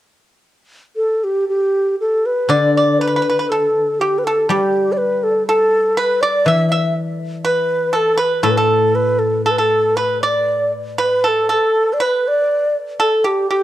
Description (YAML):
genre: chinese traditional, Chinese chamber ensemble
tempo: 60 BPM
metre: 2/4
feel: rubato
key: G gong mode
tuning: A4 = 438 Hz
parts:
  - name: xiao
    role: melody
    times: 1.0-13.6 s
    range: G4 to E5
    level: -16 LUFS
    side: equal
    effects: tape echo
  - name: pipa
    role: second line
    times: 2.5-13.6 s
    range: G4 to E5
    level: -20 LUFS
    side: right 2 dB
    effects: none
  - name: guzheng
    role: accompaniment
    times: 2.5-11.5 s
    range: A2 to G3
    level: -22 LUFS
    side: left 2 dB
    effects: none
room: wet studio reverb, RT60 0.6 s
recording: cassette tape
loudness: -14 LUFS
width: side -13 dB against mid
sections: 0.5-2.5 A section; 2.5-13.6 B section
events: none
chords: none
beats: | 0.46 1.48 | 2.50 3.51 | 4.51 5.50 | 6.49 7.47 | 8.46 9.47 | 10.49 11.52 | 12.52 13.51